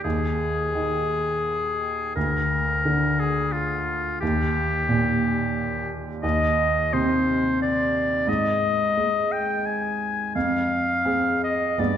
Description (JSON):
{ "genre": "classical, romantic duo for oboe and grand piano", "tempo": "87 BPM", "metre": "3/4", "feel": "uneven beats, rubato", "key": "Eb major", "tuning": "A4 = 441 Hz", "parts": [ { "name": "clear oboe", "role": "melody", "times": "0.0-12.0 s", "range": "F4 to Ab5", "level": "-24 LUFS", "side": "left 2 dB", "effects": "none" }, { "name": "clear baby grand piano", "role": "accompaniment", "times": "0.0-12.0 s", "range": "D2 to Ab4", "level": "-24 LUFS", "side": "right 1 dB", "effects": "none" } ], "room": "wet recital hall reverb, RT60 1.7 s", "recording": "heard from further back in the room", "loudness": "-21 LUFS", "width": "side -9 dB against mid", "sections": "0.0-12.0 A section", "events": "none", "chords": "0.0 N.C.; 4.2 Eb; 6.2 Cm/Eb; 8.3 N.C.; 10.4 Fm7", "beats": "| 0.04 0.76 1.46 | 2.16 2.85 3.54 | 4.21 4.89 5.55 | 6.23 6.93 7.61 | 8.28 8.96 9.65 | 10.35 11.06 11.79" }